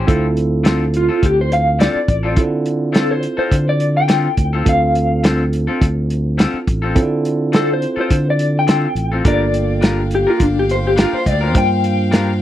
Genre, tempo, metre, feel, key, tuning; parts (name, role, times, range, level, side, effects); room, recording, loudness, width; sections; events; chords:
straight-eighth soul blues; 105 BPM; 4/4; swing 55% on 16ths; D minor; A4 = 440 Hz
tine electric piano; accompaniment; 0.0-12.4 s; Bb3 to C5; -22 LUFS; right 4 dB
electric guitar through a small old amp; stabs; 0.0-12.3 s; D3 to Bb4; -22 LUFS; left 4 dB
fingered electric bass; bass; 0.0-12.4 s; G1 to D3; -18 LUFS; equal
warm soul drum kit; drums; 0.1-12.3 s; hi-hat, kick drum, snare drum; -16 LUFS; equal
electric guitar through a small old amp; melody; 1.0-12.4 s; D4 to G5; -18 LUFS; left 2 dB; tremolo, slapback echo
rich chamber string section; sustained chords; 9.2-12.4 s; F5 to G5; -29 LUFS; left 4 dB
little or no reverb; dry, close 1970s-style studio recording; -14 LUFS; side -12 dB against mid
0.1-12.4 A section
clean electric guitar solo 0.1-12.4
0.1 Dm7; 9.2 Gm7